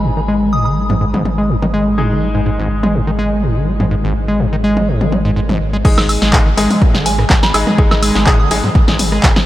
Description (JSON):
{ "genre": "acid house", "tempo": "124 BPM", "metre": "4/4", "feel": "swing 53% on 16ths", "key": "unclear", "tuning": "A4 = 440 Hz", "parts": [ { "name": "acid bass, square", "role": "riff", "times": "0.0-9.4 s", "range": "G#1 to G#3", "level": "-16 LUFS", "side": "equal", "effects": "overdrive, cassette tape, analog delay" }, { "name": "bright concert grand piano", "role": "stabs", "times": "0.0-8.6 s", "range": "G#3 to G#4", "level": "-23 LUFS", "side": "left 2 dB", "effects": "low-pass filter, analog delay" }, { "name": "saturated sub bass", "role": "bass", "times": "0.0-9.3 s", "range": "G#1", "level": "-20 LUFS", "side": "equal", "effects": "sidechain pumping" }, { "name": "soft synth bell", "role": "melody", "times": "0.5-0.7, 7.1-8.5 s", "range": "G#5 to D#6", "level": "-24 LUFS", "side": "right 1 dB", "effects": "chorus, diffuse ambient delay" }, { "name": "punchy analog drum machine", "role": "drums", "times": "0.9-9.5 s", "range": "crash cymbal, handclaps, hi-hat, rim click, snare drum, toms, woodblock", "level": "-18 LUFS", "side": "equal", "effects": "none" }, { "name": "electronic kick drum", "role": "drums", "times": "5.8-9.3 s", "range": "none", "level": "-12 LUFS", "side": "equal", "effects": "none" } ], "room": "moderate huge ambient reverb, RT60 8.1 s", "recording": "dreamy mix soaked in reverb", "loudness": "-11 LUFS", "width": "side -14 dB against mid", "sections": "0.0-5.8 A section; 5.8-9.5 B section", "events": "filter sweep on grand piano 0.0-5.8; drop 5.8-9.5", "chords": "0.0 G#5" }